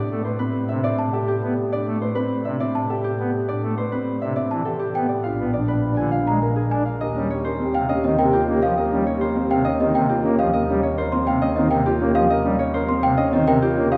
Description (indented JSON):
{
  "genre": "classical, minimalist pattern music",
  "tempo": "102 BPM",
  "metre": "3/4",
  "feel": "straight",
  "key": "A minor, Eb mixolydian from 7.0 s",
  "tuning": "A4 = 441 Hz",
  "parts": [
    { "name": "Celtic harp", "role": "melody", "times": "0.0-14.0 s", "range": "G4 to Ab5", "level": "-29 LUFS", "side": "equal", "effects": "none" },
    { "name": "dark concert grand piano", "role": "arpeggios", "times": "0.0-14.0 s", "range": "C4 to D5", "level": "-27 LUFS", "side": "equal", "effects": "none" },
    { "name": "rich studio double bass section", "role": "bass", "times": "0.0-13.9 s", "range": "Bb1 to A2", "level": "-29 LUFS", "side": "equal", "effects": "none" },
    { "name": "pipe organ, foundations", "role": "accompaniment", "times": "0.1-14.0 s", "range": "C3 to D4", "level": "-29 LUFS", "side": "equal", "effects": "none" },
    { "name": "worn celesta", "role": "arpeggios", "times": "0.8-14.0 s", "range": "Eb5 to C6", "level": "-28 LUFS", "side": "equal", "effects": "none" },
    { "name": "mellow French horn", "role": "second line", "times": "5.3-10.3 s", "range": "D4 to G4", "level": "-30 LUFS", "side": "equal", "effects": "none" }
  ],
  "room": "wet cathedral reverb, RT60 4.5 s",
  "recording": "recorded in a church or concert hall",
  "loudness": "-21 LUFS",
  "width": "mono",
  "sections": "0.0-7.0 A section; 7.0-14.0 B section",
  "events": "none",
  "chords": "0.0 Am9; 5.2 Bb7b9; 7.0 Eb9"
}